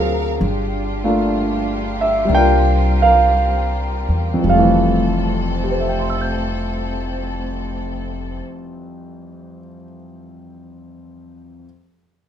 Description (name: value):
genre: jazz ballad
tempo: 51-68 BPM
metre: 4/4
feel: swing 69% on 8ths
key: F major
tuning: A4 = 437 Hz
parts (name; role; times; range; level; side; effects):
- warm concert grand piano; accompaniment; 0.0-11.7 s; F2 to G6; -18 LUFS; right 1 dB; none
- warm studio string section; sustained chords; 0.0-8.4 s; C3 to E#5; -26 LUFS; left 1 dB; none
- upright bass; bass; 0.0-8.4 s; F1 to E2; -21 LUFS; equal; none
room: light reverb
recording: minimal, uncompressed stereo recording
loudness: -15 LUFS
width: side -9 dB against mid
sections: 0.4-4.5 A section; 4.5-9.1 B section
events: slowing down 0.0-4.5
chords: 0.4 Gm7; 2.3 C7sus4; 4.5 Fmaj7